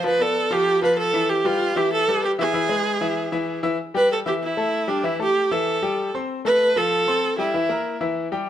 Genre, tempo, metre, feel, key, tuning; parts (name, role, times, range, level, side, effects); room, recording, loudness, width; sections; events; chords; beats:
latin; 192 BPM; 4/4; straight; A minor; A4 = 440 Hz
clear viola; melody; 0.0-8.0 s; D4 to B4; -20 LUFS; right 2 dB
bright concert grand piano; accompaniment; 0.0-8.5 s; E3 to C6; -24 LUFS; left 3 dB
moderate large studio reverb, RT60 1.1 s; close, detailed microphones; -19 LUFS; side -11 dB against mid
0.0-3.8 A section; 3.8-8.5 B section
0.0 G13; 1.3 Emadd11; 2.5 E; 3.8 A5; 6.3 Fadd9(#11); 7.5 C7 (rootless)
| 0.04 0.35 0.66 0.98 | 1.29 1.60 1.91 2.23 | 2.54 2.85 3.16 3.48 | 3.79 4.10 4.41 4.72 | 5.04 5.35 5.66 5.97 | 6.29 6.60 6.91 7.22 | 7.54 7.85 8.16 8.48